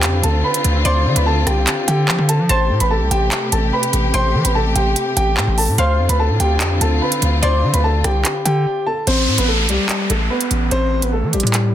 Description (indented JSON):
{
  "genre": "hip hop, drill",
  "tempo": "146 BPM",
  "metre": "4/4",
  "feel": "half-time",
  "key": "A minor",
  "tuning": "A4 = 440 Hz",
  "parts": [
    { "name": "dark concert grand piano", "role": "melody", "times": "0.0-11.7 s", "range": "G3 to C6", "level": "-20 LUFS", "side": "equal", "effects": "ping-pong delay" },
    { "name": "warm symphonic string section", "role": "sustained chords", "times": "0.0-9.0 s", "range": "C3 to G4", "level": "-23 LUFS", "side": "left 2 dB", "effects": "none" },
    { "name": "distorted 808-style bass", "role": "bass", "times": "0.0-11.7 s", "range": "A1 to F3", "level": "-17 LUFS", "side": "equal", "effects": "distortion" },
    { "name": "drill drum kit", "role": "drums", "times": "0.0-11.6 s", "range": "handclaps, hi-hat, rim click", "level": "-20 LUFS", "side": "right 2 dB", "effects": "none" },
    { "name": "warbly dusty pluck", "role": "second line", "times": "0.8-7.8 s", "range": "D5 to A5", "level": "-27 LUFS", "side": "left 2 dB", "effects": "chorus, ping-pong delay" },
    { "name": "downlifter", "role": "sound effects", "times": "9.1-11.7 s", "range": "none", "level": "-22 LUFS", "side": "equal", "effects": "none" }
  ],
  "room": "little or no reverb",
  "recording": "dense, heavily limited modern master",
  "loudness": "-14 LUFS",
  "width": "side -11 dB against mid",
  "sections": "0.0-9.1 A section; 9.1-11.7 B section",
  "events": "break 8.7-9.1",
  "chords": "0.0 Dm7; 2.5 Am7; 5.8 Dm7; 9.1 Am7"
}